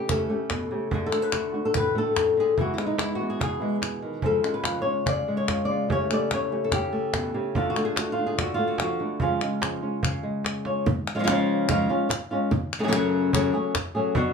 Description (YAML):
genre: flamenco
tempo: 145 BPM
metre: 4/4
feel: straight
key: C# phrygian dominant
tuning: A4 = 440 Hz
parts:
  - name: flamenco guitar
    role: melody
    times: 0.0-14.3 s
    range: F#2 to D5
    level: -24 LUFS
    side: left 2 dB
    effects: plate reverb
  - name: flamenco guitar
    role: stabs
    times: 0.0-10.9 s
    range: E2 to G4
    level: -31 LUFS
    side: right 4 dB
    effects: none
  - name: cajon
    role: percussion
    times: 0.1-14.3 s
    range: none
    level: -29 LUFS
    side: right 2 dB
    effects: none
  - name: palmas hand claps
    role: percussion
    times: 0.1-13.9 s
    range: none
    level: -29 LUFS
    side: left 5 dB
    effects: none
room: moderate studio ambience, RT60 0.5 s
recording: small room reverb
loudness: -23 LUFS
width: side -6 dB against mid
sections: 0.0-10.9 A section; 10.9-14.3 B section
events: drum fill 10.7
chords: 0.0 A7/C#; 0.9 D; 2.6 E; 4.2 C#; 5.9 A7/C#; 7.6 D; 9.2 C#; 12.5 F#madd9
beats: 0.09 0.50 | 0.92 1.33 1.75 2.16 | 2.58 2.99 3.41 3.82 | 4.24 4.65 5.07 5.48 | 5.90 6.31 6.73 7.14 | 7.56 7.97 8.38 8.80 | 9.21 9.63 10.04 10.45 | 10.87 11.28 11.69 12.10 | 12.51 12.92 13.33 13.74 | 14.15